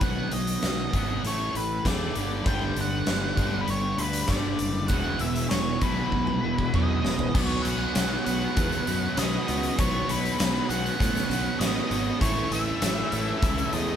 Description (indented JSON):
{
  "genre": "classic rock",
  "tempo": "98 BPM",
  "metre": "4/4",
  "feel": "straight",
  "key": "unclear",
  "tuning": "A4 = 439 Hz",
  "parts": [
    { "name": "octave-fuzz lead guitar", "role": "melody", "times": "0.0-14.0 s", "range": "B4 to G5", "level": "-31 LUFS", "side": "equal", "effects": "distortion" },
    { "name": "bright tonewheel organ", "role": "sustained chords", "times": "0.0-14.0 s", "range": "C#3 to C#5", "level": "-39 LUFS", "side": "equal", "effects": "none" },
    { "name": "distorted electric guitar", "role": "riff", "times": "0.0-14.0 s", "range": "E2 to B3", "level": "-32 LUFS", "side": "right 6 dB", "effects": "distortion" },
    { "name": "tight distorted guitar", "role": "riff", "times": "0.0-14.0 s", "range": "E2 to A4", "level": "-34 LUFS", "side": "left 5 dB", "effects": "distortion" },
    { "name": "fuzz fingered electric bass", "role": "bass", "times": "0.0-13.9 s", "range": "E1 to A2", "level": "-31 LUFS", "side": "left 1 dB", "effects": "overdrive" },
    { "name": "big rock drum kit", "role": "drums", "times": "0.0-13.9 s", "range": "crash cymbal, hi-hat, kick drum, snare drum, toms", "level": "-28 LUFS", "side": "equal", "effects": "none" },
    { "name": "biting overdriven guitar", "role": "riff", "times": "2.4-14.0 s", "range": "E2 to B3", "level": "-34 LUFS", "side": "left 1 dB", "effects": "none" },
    { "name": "tambourine", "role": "percussion", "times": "7.3-14.0 s", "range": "none", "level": "-47 LUFS", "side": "right 3 dB", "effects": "none" }
  ],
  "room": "moderate stone room reverb, RT60 1.0 s",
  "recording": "band playing live in one room",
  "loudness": "-23 LUFS",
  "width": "side -9 dB against mid",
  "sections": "0.0-7.4 A section; 7.4-14.0 B section",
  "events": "drum fill 6.1-7.4",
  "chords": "0.0 B; 1.2 A; 2.2 G; 4.9 E; 7.4 Bsus2; 12.2 A",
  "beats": "| 0.01 0.63 1.24 1.85 | 2.46 3.08 3.69 4.30 | 4.91 5.52 6.13 6.74 | 7.35 7.96 8.57 9.18 | 9.79 10.40 11.01 11.61 | 12.22 12.83 13.44"
}